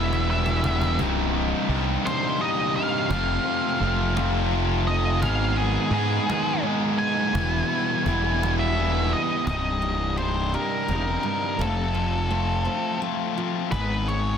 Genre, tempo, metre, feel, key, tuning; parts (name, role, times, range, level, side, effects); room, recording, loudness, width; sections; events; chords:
quiet-loud alternative rock; 57 BPM (dotted quarters); 6/8; straight; A4 = 442 Hz
octave-fuzz lead guitar; melody; 0.0-14.4 s; Ab4 to Ab5; -28 LUFS; right 1 dB; distortion, slapback echo
biting overdriven guitar; riff; 0.0-9.4 s; C2 to Ab4; -28 LUFS; right 16 dB
thick fuzz guitar; riff; 0.0-14.4 s; C2 to Ab4; -27 LUFS; left 12 dB; distortion
fuzz fingered electric bass; bass; 0.0-14.4 s; C1 to Ab2; -26 LUFS; equal; overdrive
cajon; drums; 0.1-14.2 s; -33 LUFS; equal
picked steel-string acoustic guitar; arpeggios; 9.5-14.4 s; C2 to C4; -33 LUFS; right 9 dB; slapback echo
studio reverb; dense, heavily limited modern master; -22 LUFS; side -8 dB against mid
0.0-9.5 A section; 9.5-14.4 B section
drum fill 0.0-1.0; lead electric guitar solo 0.0-9.5; half time 9.5-14.4
0.0 Em; 1.0 Cm; 3.1 F; 5.2 Abm; 7.3 Em; 9.5 Cm; 11.6 F; 13.7 Abm